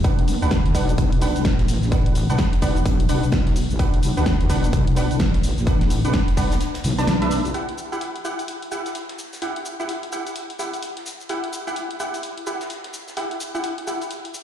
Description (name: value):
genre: bass house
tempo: 128 BPM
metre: 4/4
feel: swing 61% on 16ths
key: E minor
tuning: A4 = 445 Hz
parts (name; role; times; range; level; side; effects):
- orchestra-hit-like synth stab; stabs; 0.0-14.0 s; D4 to A5; -26 LUFS; right 1 dB; built-in reverb, sidechain pumping, tape echo
- wobble bass; bass; 0.0-7.5 s; A1 to D2; -21 LUFS; left 1 dB; chorus, tube saturation, sidechain pumping
- big-room dance drum kit; drums; 0.0-14.4 s; cabasa, hi-hat, snare drum; -29 LUFS; equal; none
- electronic kick drum; drums; 0.0-6.5 s; none; -20 LUFS; equal; none
- huge arena drum kit; drums; 0.0-14.4 s; hi-hat, snare drum; -42 LUFS; right 1 dB; sidechain pumping on hats, high-pass filter on hats, low-pass filter on hats, high-pass filter on snare, low-pass filter on snare, high-pass filter on room, low-pass filter on room
room: light reverb, studio reverb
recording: played on a big sound system in a bare room, large studio reverb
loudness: -20 LUFS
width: side -10 dB against mid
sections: 0.0-7.5 A section; 7.5-14.4 B section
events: kick drops out 6.6-7.5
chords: 0.0 Bm; 7.5 Emadd9